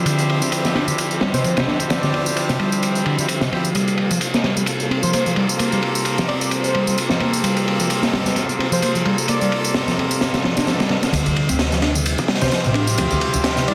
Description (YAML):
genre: breakbeat, breaks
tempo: 130 BPM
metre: 4/4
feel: swing 55% on 16ths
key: D minor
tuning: A4 = 441 Hz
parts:
  - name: percussive tonewheel organ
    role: sustained chords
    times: 0.0-13.7 s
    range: C3 to E5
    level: -30 LUFS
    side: equal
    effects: chorus vibrato, slow rotary speaker, vintage 12-bit sampler grit, sidechain pumping, low-pass filter
  - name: overdriven picked electric bass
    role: riff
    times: 0.0-13.7 s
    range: C3 to D4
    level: -25 LUFS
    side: equal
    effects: tube saturation, vintage 12-bit sampler grit, low-pass filter, digital delay
  - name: brilliant horn section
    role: stabs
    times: 0.0-13.7 s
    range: Bb3 to A4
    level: -28 LUFS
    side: equal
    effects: low-pass filter, digital delay
  - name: crunchy breakbeat drum kit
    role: drums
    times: 0.1-13.7 s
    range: kick drum, ride cymbal, snare drum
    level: -24 LUFS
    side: equal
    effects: high-pass filter on kick, low-pass filter on kick, high-pass filter on cymbals, low-pass filter on cymbals, high-pass filter on snare, low-pass filter on snare, high-pass filter on room, low-pass filter on room
  - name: tambourine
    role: drums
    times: 0.1-13.7 s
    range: none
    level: -29 LUFS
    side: equal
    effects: overdrive, high-pass filter on perc
  - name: plucky unison lead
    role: melody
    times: 1.3-13.7 s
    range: C5 to D5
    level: -30 LUFS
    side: equal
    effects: old record sound, digital delay
  - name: swell and riser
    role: sound effects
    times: 10.4-13.7 s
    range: none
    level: -36 LUFS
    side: equal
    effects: none
  - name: upright bass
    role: bass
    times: 11.1-13.7 s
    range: A1 to D2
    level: -26 LUFS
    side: equal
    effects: tube saturation, low-pass filter
room: moderate lush hall reverb, RT60 2.0 s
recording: dense, heavily limited modern master, vinyl crackle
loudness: -19 LUFS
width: mono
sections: 0.0-11.1 A section; 11.1-13.7 B section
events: filter sweep on picked electric bass 0.0-11.1; filter sweep on tonewheel organ 0.0-11.1, 11.1-13.7; build-up 11.1-13.7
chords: 0.0 Dm11; 3.8 Gm11; 11.1 Dm11